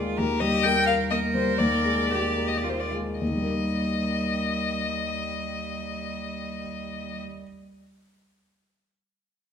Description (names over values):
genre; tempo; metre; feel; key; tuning
quick classical-period movement for piano trio; 102-133 BPM; 3/4; rubato; Eb major; A4 = 439 Hz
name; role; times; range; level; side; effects
clear cello; second line; 0.0-7.2 s; G3 to Bb4; -32 LUFS; right 6 dB; none
warm concert grand piano; accompaniment; 0.0-7.5 s; Eb2 to Bb4; -28 LUFS; left 1 dB; none
clear violin; melody; 0.2-7.2 s; Bb4 to G5; -28 LUFS; left 6 dB; none
room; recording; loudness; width
wet recital hall reverb, RT60 1.3 s; minimal, uncompressed stereo recording; -24 LUFS; side -7 dB against mid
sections
0.0-3.2 A section; 3.2-6.6 B section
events
slowing down 0.0-3.2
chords
0.2 Eb; 1.6 Bb7/Eb; 3.2 Eb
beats
| 0.18 0.64 1.10 | 1.59 2.10 2.63 | 3.21 3.78 4.34 | 4.90 5.47 6.03